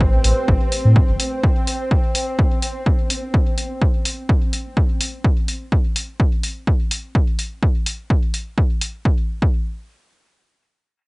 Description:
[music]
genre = dub techno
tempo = 126 BPM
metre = 4/4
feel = swing 55% on 16ths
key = A minor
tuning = A4 = 440 Hz
[part]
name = dark analog pad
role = sustained chords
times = 0.0-1.4 s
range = A3 to B4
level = -33 LUFS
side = equal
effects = lush chorus, sidechain pumping, cassette tape
[part]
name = pure sine sub bass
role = bass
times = 0.0-1.2 s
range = G1 to A2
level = -15 LUFS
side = equal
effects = tube saturation, sidechain pumping
[part]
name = electronic kick drum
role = drums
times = 0.0-9.6 s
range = none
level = -17 LUFS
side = equal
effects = cassette tape
[part]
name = bubbling stepped-filter texture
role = texture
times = 0.0-5.3 s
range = C4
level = -27 LUFS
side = equal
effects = chorus, built-in reverb, sidechain pumping, cassette tape
[part]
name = electronic hi-hat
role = drums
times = 0.2-8.9 s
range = none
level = -24 LUFS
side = left 1 dB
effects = overdrive, cassette tape
[sound]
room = little or no reverb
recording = home recording on cassette, nothing above 10.9 kHz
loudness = -17 LUFS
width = side -26 dB against mid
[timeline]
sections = 0.0-9.1 A section; 9.1-11.1 B section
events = none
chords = 0.0 Am7; 9.1 N.C.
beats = 0.01 0.48 0.96 | 1.43 1.91 2.39 2.86 | 3.34 3.81 4.29 4.77 | 5.24 5.72 6.20 6.67 | 7.15 7.62 8.10 8.58 | 9.05 9.53

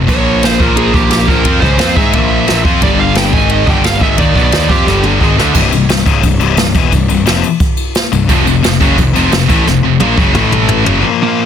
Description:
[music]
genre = heavy metal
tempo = 176 BPM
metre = 4/4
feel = straight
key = unclear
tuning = A4 = 437 Hz
[part]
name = heavy high-gain guitar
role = riff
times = 0.0-11.5 s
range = C2 to Ab4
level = -14 LUFS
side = left 10 dB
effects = distortion
[part]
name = scooped high-gain guitar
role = riff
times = 0.0-5.6, 8.3-11.0 s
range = F2 to Ab4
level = -16 LUFS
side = right 16 dB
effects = distortion
[part]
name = fuzz picked electric bass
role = bass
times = 0.0-11.0 s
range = C1 to Ab2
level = -16 LUFS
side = right 1 dB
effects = overdrive
[part]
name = high-gain lead guitar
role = melody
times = 0.1-5.0, 11.2-11.5 s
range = Bb3 to Ab5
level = -16 LUFS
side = right 5 dB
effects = distortion
[part]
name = jazz brush drum kit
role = drums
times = 0.1-10.9 s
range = crash cymbal, kick drum, ride cymbal, snare drum, toms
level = -13 LUFS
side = equal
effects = none
[sound]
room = little or no reverb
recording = dense, heavily limited modern master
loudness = -8 LUFS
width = side -8 dB against mid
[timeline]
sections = 0.0-5.6 A section; 5.6-11.0 B section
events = drum fill 4.9-5.6, 9.7-11.0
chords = 0.1 Bb5; 2.8 G5; 3.3 Ab5; 3.7 G5; 5.6 C; 8.3 F5; 10.3 A5; 10.9 F#5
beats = | 0.09 0.43 0.77 1.11 | 1.45 1.80 2.14 2.48 | 2.82 3.16 3.51 3.85 | 4.19 4.53 4.88 5.22 | 5.56 5.90 6.24 6.58 | 6.92 7.27 7.61 7.95 | 8.29 8.63 8.97 9.32 | 9.66 10.00 10.34 10.68 | 11.03 11.37

